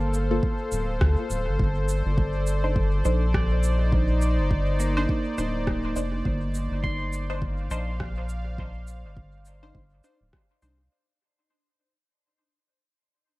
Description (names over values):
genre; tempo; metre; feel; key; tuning
ambient dub; 103 BPM; 4/4; swing 58% on 16ths; unclear; A4 = 439 Hz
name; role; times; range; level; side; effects
warm analog pad; sustained chords; 0.0-10.9 s; Eb4 to F5; -31 LUFS; left 1 dB; chorus
pedal steel guitar; arpeggios; 0.0-9.3 s; Bb3 to C6; -36 LUFS; right 2 dB; dub echo
round analog bass; bass; 0.0-10.9 s; D1 to D2; -25 LUFS; equal; none
electronic cabasa and rim click; drums; 0.1-10.8 s; none; -36 LUFS; right 1 dB; dub echo
filtered dub chord stab; stabs; 0.3-10.8 s; Bb3 to C5; -34 LUFS; equal; phaser, dub echo
electronic kick drum; drums; 0.4-10.5 s; none; -28 LUFS; equal; overdrive
room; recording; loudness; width
little or no reverb; vinyl crackle; -23 LUFS; side -20 dB against mid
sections
0.0-10.9 A section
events
fade-out 4.7-10.9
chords
0.0 Gm9; 1.6 Cmadd9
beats
0.43 1.01 | 1.59 2.18 2.76 3.34 | 3.92 4.51 5.09 5.67 | 6.25 6.84 7.42 8.00 | 8.58 9.17 9.75 10.33